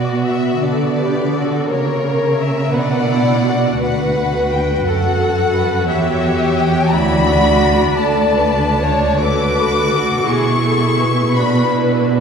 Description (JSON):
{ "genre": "classical, slow romantic movement for string orchestra", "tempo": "46-59 BPM (dotted quarters)", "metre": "6/8", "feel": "rubato", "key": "unclear", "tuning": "A4 = 440 Hz", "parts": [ { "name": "warm symphonic violin section", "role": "melody", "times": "0.0-11.7 s", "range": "C#5 to D6", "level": "-20 LUFS", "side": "left 4 dB", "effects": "none" }, { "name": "warm chamber violin section", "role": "second line", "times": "0.0-12.2 s", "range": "F#4 to D5", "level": "-21 LUFS", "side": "left 3 dB", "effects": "none" }, { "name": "rich chamber viola section", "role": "accompaniment", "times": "0.0-12.2 s", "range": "A#3 to D5", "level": "-20 LUFS", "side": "right 1 dB", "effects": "none" }, { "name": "warm chamber cello section", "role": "bass", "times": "0.0-12.2 s", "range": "D2 to D3", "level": "-17 LUFS", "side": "right 2 dB", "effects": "none" } ], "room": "wet church reverb, RT60 3.1 s", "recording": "dark, warm production", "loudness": "-13 LUFS", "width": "side -6 dB against mid", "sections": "0.0-12.2 A section", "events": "none", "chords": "0.0 Bm; 1.7 C#m6; 2.7 Bm; 3.8 D; 5.9 C#dim/E; 6.9 D; 10.3 G#dim/B", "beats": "0.62 | 1.69 2.74 | 3.81 4.84 | 5.88 6.91 | 7.97 9.19 | 10.28 11.36" }